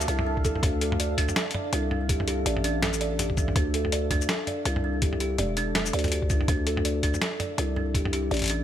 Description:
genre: half-time drum and bass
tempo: 164 BPM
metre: 4/4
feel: swing 58% on 16ths, half-time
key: D minor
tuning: A4 = 440 Hz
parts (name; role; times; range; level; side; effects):
- deep dark ambient pad; sustained chords; 0.0-8.6 s; D4 to F5; -34 LUFS; equal; chorus, built-in reverb, sidechain pumping
- kalimba; arpeggios; 0.0-8.6 s; D4 to D5; -31 LUFS; right 2 dB; ping-pong delay
- growling 808-style bass; bass; 0.0-8.6 s; E1 to D2; -28 LUFS; equal; none
- boom bap sampler-style drum kit; drums; 0.0-8.6 s; hi-hat, shaker, snare drum, toms; -29 LUFS; left 1 dB; small room ambience
- electronic kick drum; drums; 0.4-8.0 s; none; -27 LUFS; equal; small room ambience
room: light reverb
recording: none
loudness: -24 LUFS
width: side -10 dB against mid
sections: 0.0-8.6 A section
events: none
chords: 0.0 Dm

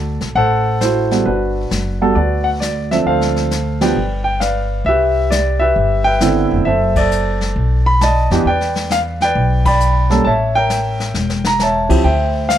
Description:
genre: jazz piano trio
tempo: 133 BPM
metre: 4/4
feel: swing 67% on 8ths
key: G major, C major from 4.9 s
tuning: A4 = 440 Hz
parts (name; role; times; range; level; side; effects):
- warm grand piano; melody; 0.0-12.6 s; D3 to B5; -15 LUFS; right 1 dB; none
- upright bass; bass; 0.0-12.6 s; E1 to F2; -18 LUFS; left 1 dB; none
- vintage brush drum kit; drums; 0.2-12.6 s; brushed snare drum, crash cymbal, hi-hat, kick drum, ride cymbal, snare drum; -23 LUFS; left 3 dB; none
room: moderate spring reverb, RT60 1.6 s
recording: none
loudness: -13 LUFS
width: side -11 dB against mid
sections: 0.0-4.9 A section; 4.9-12.6 B section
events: band accent 3.7, 6.9, 9.6; drum fill 11.2-11.6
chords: 0.0 D9; 1.3 Gmaj7; 3.1 Dm7; 4.0 G7; 4.9 Cmaj9; 6.7 F#dim; 7.6 B7#9; 8.5 Em7; 10.3 A7b9; 12.0 D9sus4

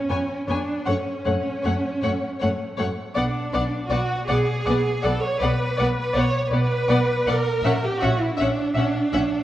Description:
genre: classical, slow romantic movement for string orchestra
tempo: 53 BPM (dotted quarters)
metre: 12/8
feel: rubato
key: unclear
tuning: A4 = 440 Hz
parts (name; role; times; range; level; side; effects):
- clear studio cello section; bass; 0.0-9.4 s; C#4 to C#5; -25 LUFS; right 2 dB; none
- rich studio violin section; melody; 0.1-9.2 s; F#5 to G#5; -32 LUFS; left 3 dB; none
- rich studio violin section; second line; 0.1-9.2 s; C#5 to E5; -29 LUFS; left 3 dB; none
- rich studio viola section; accompaniment; 0.1-9.2 s; A3 to C#4; -28 LUFS; left 1 dB; none
- warm studio double bass section; bass; 0.1-9.2 s; A#1 to F#2; -26 LUFS; right 1 dB; none
room: wet scoring stage reverb, RT60 1.6 s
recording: worn, warbling old tape, cassette tape, warbly pitch drift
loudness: -20 LUFS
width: side -13 dB against mid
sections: 0.0-9.4 A section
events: none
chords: 0.0 C#7/E#; 0.9 F#m; 3.2 Bm; 7.6 F#/A# (rootless)

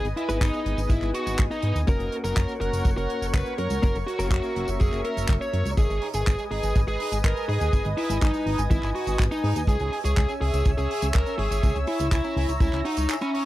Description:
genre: italo disco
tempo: 123 BPM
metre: 4/4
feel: straight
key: G# minor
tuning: A4 = 440 Hz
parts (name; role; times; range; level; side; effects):
- bluesy overdriven lead guitar; melody; 0.0-13.5 s; C#4 to C#5; -29 LUFS; equal; distortion, tape echo
- lush unison pad; sustained chords; 0.0-13.5 s; A#4 to E6; -32 LUFS; equal; chorus
- direct-recorded clean electric guitar; stabs; 0.0-5.8 s; A#3 to B4; -33 LUFS; left 2 dB; tremolo, low-pass filter
- chorused synth bass; bass; 0.0-13.1 s; F#1 to G#2; -26 LUFS; equal; tube saturation
- damped 70s drum kit; drums; 0.0-13.4 s; handclaps, hi-hat, tambourine; -35 LUFS; right 1 dB; studio reverb
- kick drum; drums; 0.4-12.7 s; none; -23 LUFS; equal; studio reverb
- electric guitar with an envelope filter; arpeggios; 5.8-13.5 s; G#3 to C#5; -36 LUFS; right 4 dB; tape echo
room: little or no reverb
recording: dry, close 1970s-style studio recording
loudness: -22 LUFS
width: side -15 dB against mid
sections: 0.0-13.5 A section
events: band accent 13.1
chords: 0.0 G#m; 1.9 F#; 5.8 G#m; 9.7 C#m

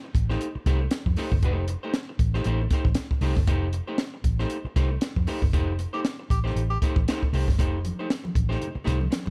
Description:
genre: funk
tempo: 117 BPM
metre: 4/4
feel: swing 56% on 16ths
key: F mixolydian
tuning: A4 = 444 Hz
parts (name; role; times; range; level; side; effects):
- vintage hollow-body jazz guitar; accompaniment; 0.0-9.3 s; A3 to C5; -35 LUFS; equal; none
- vintage muted fingered electric bass; bass; 0.1-9.3 s; F1 to F2; -28 LUFS; equal; none
- compact cocktail drum kit; drums; 0.1-9.3 s; hi-hat, kick drum, snare drum; -28 LUFS; equal; none
- breathy tenor saxophone; second line; 5.9-6.8 s; G4; -36 LUFS; equal; none
- congas; percussion; 7.6-9.3 s; none; -38 LUFS; equal; none
room: studio reverb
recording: none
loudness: -26 LUFS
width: mono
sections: 0.0-9.3 A section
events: band accent 5.5-7.6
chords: 0.0 F9

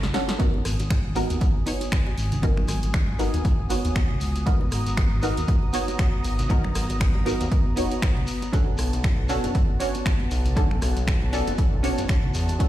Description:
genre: deep house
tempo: 118 BPM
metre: 4/4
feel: swing 57% on 16ths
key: G# minor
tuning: A4 = 440 Hz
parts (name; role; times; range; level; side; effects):
- filtered dub chord stab; stabs; 0.0-12.7 s; B3 to C#5; -29 LUFS; right 1 dB; wide subtle chorus, vintage 12-bit sampler grit, sidechain pumping, dub echo
- punchy analog drum machine; drums; 0.0-12.7 s; finger snaps, hi-hat, rim click, snare drum; -34 LUFS; equal; none
- congas and bongos; percussion; 0.0-12.6 s; none; -35 LUFS; right 2 dB; none
- warm analog pad; sustained chords; 0.4-12.7 s; B3 to D#6; -33 LUFS; left 1 dB; chorus, sidechain pumping
- electronic kick drum; drums; 0.4-12.7 s; none; -22 LUFS; equal; none
- shekere; percussion; 0.4-12.7 s; none; -39 LUFS; left 4 dB; none
- smooth synth bass; bass; 0.7-12.7 s; D#1 to E2; -26 LUFS; equal; sidechain pumping
room: little or no reverb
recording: played on a big sound system in a bare room, stone room reverb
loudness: -21 LUFS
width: side -14 dB against mid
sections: 0.0-12.7 A section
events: drum fill 0.0-0.4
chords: 0.4 G#m7; 8.5 Bm7

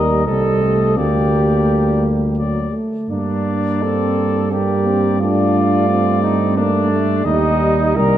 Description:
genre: classical, brass quintet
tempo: 86 BPM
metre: 3/4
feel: rubato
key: G minor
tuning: A4 = 441 Hz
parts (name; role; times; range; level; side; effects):
- clear trumpet; melody; 0.0-8.2 s; D5 to Eb5; -24 LUFS; left 9 dB; none
- mellow flugelhorn; second line; 0.0-8.2 s; D4 to Bb4; -20 LUFS; right 3 dB; none
- clear trombone; accompaniment; 0.0-8.2 s; F#3 to Bb3; -24 LUFS; right 1 dB; none
- warm French horn; accompaniment; 0.0-8.2 s; G3 to D4; -22 LUFS; left 4 dB; none
- mellow tuba; bass; 0.0-8.2 s; C2 to G2; -18 LUFS; right 2 dB; none
room: wet recital hall reverb, RT60 1.7 s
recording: dark, warm production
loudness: -14 LUFS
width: side -11 dB against mid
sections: 0.0-8.2 A section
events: none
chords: 0.3 Cm; 1.0 Gm/D; 2.4 D; 3.1 Gm; 5.2 Dm/G; 7.3 Eb

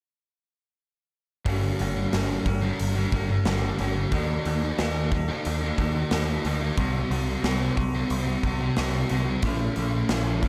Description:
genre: rock, shoegaze and dream pop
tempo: 90 BPM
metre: 4/4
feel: straight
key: G minor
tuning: A4 = 440 Hz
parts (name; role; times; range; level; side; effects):
- overdriven electric guitar; riff; 1.4-10.5 s; G2 to G4; -32 LUFS; equal; reverse reverb
- thick fuzz guitar; riff; 1.4-10.5 s; G2 to Eb4; -32 LUFS; equal; distortion, ensemble chorus
- growling picked electric bass; bass; 1.5-10.5 s; G1 to Eb2; -30 LUFS; equal; overdrive
- big rock drum kit; drums; 1.5-10.5 s; hi-hat, kick drum, snare drum; -33 LUFS; equal; none
room: small room ambience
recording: dark, warm production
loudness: -26 LUFS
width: mono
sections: 1.5-10.5 A section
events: none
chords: 1.5 Gm; 4.1 Eb; 6.8 Cm; 9.4 Bb

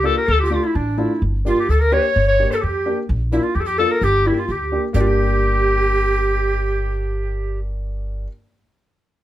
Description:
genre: klezmer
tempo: 129 BPM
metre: 2/4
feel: straight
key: G dorian sharp4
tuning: A4 = 439 Hz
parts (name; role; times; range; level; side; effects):
- warm clarinet; melody; 0.0-7.6 s; D4 to C#5; -20 LUFS; left 1 dB; none
- breathy tenor recorder; second line; 0.0-7.6 s; D4 to C#5; -24 LUFS; right 4 dB; none
- dark upright piano; accompaniment; 0.0-8.3 s; A3 to G4; -26 LUFS; left 1 dB; none
- upright bass; bass; 0.0-8.2 s; G1 to F2; -21 LUFS; equal; none
room: light reverb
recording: dark, warm production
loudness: -16 LUFS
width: side -13 dB against mid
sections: 0.0-4.9 A section; 4.9-6.8 B section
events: none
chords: 0.3 Dm; 1.2 Gm; 3.1 Bb; 4.0 Gm

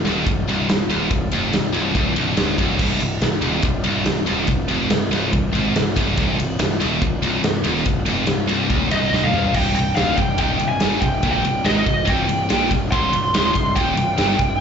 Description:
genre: heavy metal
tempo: 142 BPM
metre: 4/4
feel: straight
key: C minor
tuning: A4 = 440 Hz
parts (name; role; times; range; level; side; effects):
- fuzz picked electric bass; bass; 0.0-14.6 s; C1 to Bb1; -24 LUFS; equal; overdrive
- scooped high-gain guitar; riff; 0.1-14.6 s; C2 to Bb2; -21 LUFS; equal; distortion
- big rock drum kit; drums; 0.1-14.5 s; crash cymbal, kick drum, ride cymbal, snare drum, toms; -22 LUFS; equal; none
- high-gain lead guitar; melody; 8.9-14.6 s; Eb5 to C6; -21 LUFS; equal; distortion, slapback echo
room: small room ambience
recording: live gig heard through the venue's PA, club reverb, nothing above 7.7 kHz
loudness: -17 LUFS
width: side -7 dB against mid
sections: 0.0-9.5 A section; 9.5-14.6 B section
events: drum fill 9.1-9.5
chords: 0.0 Cm

